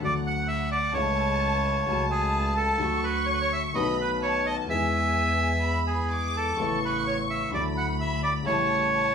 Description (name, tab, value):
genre	tango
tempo	128 BPM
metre	4/4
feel	rubato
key	A major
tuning	A4 = 439 Hz
part	bandoneon	melody	0.0-9.1 s	G#4 to F#5	-26 LUFS	right 1 dB	none
part	warm symphonic violin section	second line	0.0-9.1 s	F#5 to D6	-31 LUFS	equal	none
part	warm concert grand piano	accompaniment	0.0-9.1 s	A1 to G#4	-31 LUFS	left 4 dB	none
part	warm double bass	bass	0.0-9.1 s	A1 to E2	-31 LUFS	right 1 dB	none
room	wet studio ambience, RT60 0.5 s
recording	band playing live in one room, small room ambience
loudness	-23 LUFS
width	side -6 dB against mid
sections	0.0-9.1 A section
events	none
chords	0.0 D; 0.9 A/C#; 1.9 F#m/C#; 2.8 D; 3.7 B7; 4.7 E; 6.6 Aadd9; 7.5 Dadd9; 8.5 A7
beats	0.01 0.48 | 0.95 1.41 1.88 2.34 | 2.81 3.28 3.75 4.22 | 4.69 5.16 5.63 6.11 | 6.58 7.05 7.52 7.99 | 8.45 8.92